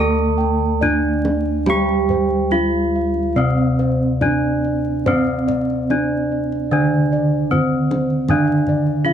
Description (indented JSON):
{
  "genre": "Javanese gamelan",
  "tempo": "70-80 BPM",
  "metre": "4/4",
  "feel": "straight",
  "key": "D slendro",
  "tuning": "A4 = 445 Hz",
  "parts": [
    { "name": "gamelan-type bronze metallophone", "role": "melody", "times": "0.0-9.1 s", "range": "C4-40c to A4+20c", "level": "-19 LUFS", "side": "equal", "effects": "none" },
    { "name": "gamelan-type bronze metallophone", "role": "accompaniment", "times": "0.0-9.1 s", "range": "D3 to C4-40c", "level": "-22 LUFS", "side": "right 2 dB", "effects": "none" },
    { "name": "gamelan-type bossed gongs", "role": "arpeggios", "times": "0.0-9.1 s", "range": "C5-40c to G5-20c", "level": "-28 LUFS", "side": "left 4 dB", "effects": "none" },
    { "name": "gamelan-type bronze metallophone", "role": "arpeggios", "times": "0.0-9.1 s", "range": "C5-40c to A5+20c", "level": "-28 LUFS", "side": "right 3 dB", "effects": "none" },
    { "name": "gamelan-type bossed gongs", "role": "bass", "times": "0.0-9.1 s", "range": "D2 to C5-40c", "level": "-22 LUFS", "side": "equal", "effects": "none" },
    { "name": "kendang", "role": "percussion", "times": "0.2-9.1 s", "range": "none", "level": "-27 LUFS", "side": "left 1 dB", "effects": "none" }
  ],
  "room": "light reverb",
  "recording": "close, detailed microphones, vinyl crackle",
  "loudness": "-16 LUFS",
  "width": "side -9 dB against mid",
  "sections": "0.0-9.1 A section",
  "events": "none",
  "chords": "none"
}